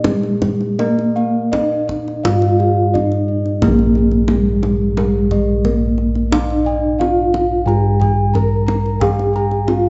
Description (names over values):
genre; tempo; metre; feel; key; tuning
Javanese gamelan; 88 BPM; 4/4; uneven beats; Bb slendro; A4 = 438 Hz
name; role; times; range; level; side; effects
gamelan-type bronze metallophone; melody; 0.0-9.9 s; Ab3-45c to Bb4; -20 LUFS; equal; slapback echo
gamelan-type bossed gongs; arpeggios; 0.0-9.9 s; Ab4-45c to Bb5; -28 LUFS; equal; none
gamelan-type bronze metallophone; arpeggios; 0.0-9.9 s; Ab4-45c to Bb5; -26 LUFS; equal; none
gamelan-type bossed gongs; bass; 0.0-9.9 s; Bb1 to Bb4; -20 LUFS; equal; none
kendang; percussion; 0.0-9.8 s; none; -26 LUFS; equal; none
room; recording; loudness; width
moderate recital hall reverb, RT60 1.6 s; nothing above 7.8 kHz; -16 LUFS; mono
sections
0.0-3.6 A section; 3.6-9.9 B section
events
none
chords
none